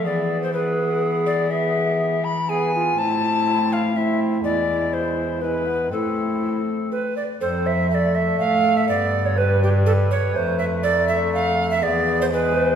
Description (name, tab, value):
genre	classical, renaissance-style consort dance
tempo	123 BPM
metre	3/4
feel	straight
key	unclear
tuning	A4 = 440 Hz
part	mellow hollow tenor recorder	melody	0.0-12.8 s	G#4 to B5	-24 LUFS	left 4 dB	none
part	mellow tenor recorder	second line	0.0-12.8 s	E4 to F5	-22 LUFS	right 3 dB	none
part	brilliant trombone	accompaniment	0.0-12.8 s	G3 to C4	-29 LUFS	left 2 dB	none
part	rich cello	bass	0.0-12.8 s	E2 to E3	-24 LUFS	equal	none
room	wet recital hall reverb, RT60 1.6 s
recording	recorded in a church or concert hall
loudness	-18 LUFS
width	side -8 dB against mid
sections	0.0-7.4 A section; 7.4-12.8 A section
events	none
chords	0.0 E; 3.0 Am; 4.4 E; 5.9 Am; 7.4 F; 8.9 G; 10.4 F; 11.8 E